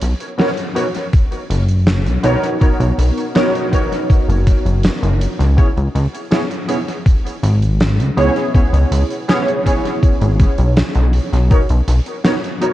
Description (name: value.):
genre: vaporwave.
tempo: 81 BPM.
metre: 4/4.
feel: straight.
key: B major.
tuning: A4 = 440 Hz.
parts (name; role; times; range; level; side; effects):
chorused synth bass; bass; 0.0-12.0 s; F#1 to C#2; -14 LUFS; equal; tube saturation.
huge arena drum kit; drums; 0.0-12.7 s; hi-hat, snare drum; -22 LUFS; equal; vintage 12-bit sampler grit, dub echo.
warbly lo-fi synth keys; accompaniment; 0.4-12.7 s; B3 to C#5; -19 LUFS; equal; lush chorus, vintage 12-bit sampler grit, dub echo.
electronic kick drum; drums; 1.1-11.7 s; none; -13 LUFS; equal; vintage 12-bit sampler grit.
room: light reverb, small room ambience.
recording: echo-heavy mix, cassette tape.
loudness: -13 LUFS.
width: side -14 dB against mid.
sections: 0.0-12.7 A section.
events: none.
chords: 0.0 Bmaj9; 5.6 C#m7; 11.5 Bmaj9.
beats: 0.40 1.14 1.88 | 2.62 3.36 4.10 4.84 | 5.58 6.32 7.06 7.80 | 8.54 9.28 10.02 10.77 | 11.51 12.25.